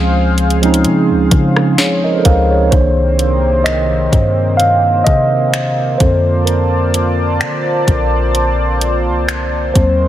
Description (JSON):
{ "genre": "contemporary R&B", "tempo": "64 BPM", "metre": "4/4", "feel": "swing 54% on 16ths", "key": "C dorian", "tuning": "A4 = 444 Hz", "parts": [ { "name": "mellow tine electric piano", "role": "accompaniment", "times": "0.0-10.1 s", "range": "D3 to F5", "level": "-15 LUFS", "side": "right 2 dB", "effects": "slow stereo tremolo" }, { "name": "chorused pulse-width pad", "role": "sustained chords", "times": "0.0-10.1 s", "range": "C3 to A5", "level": "-19 LUFS", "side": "left 1 dB", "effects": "none" }, { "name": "soft 808-style bass", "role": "bass", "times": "0.0-10.1 s", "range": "Bb1 to D3", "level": "-16 LUFS", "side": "left 1 dB", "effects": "none" }, { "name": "smooth R&B drum kit", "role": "drums", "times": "0.4-10.0 s", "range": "finger snaps, hi-hat, kick drum, rim click, snare drum", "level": "-16 LUFS", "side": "equal", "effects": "none" } ], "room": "light reverb", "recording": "none", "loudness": "-11 LUFS", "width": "side -12 dB against mid", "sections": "0.0-2.7 A section; 2.7-10.1 B section", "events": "tine electric piano solo 2.7-10.1", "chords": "0.0 Dbmaj7; 2.7 Cm7; 6.0 Bbmaj7" }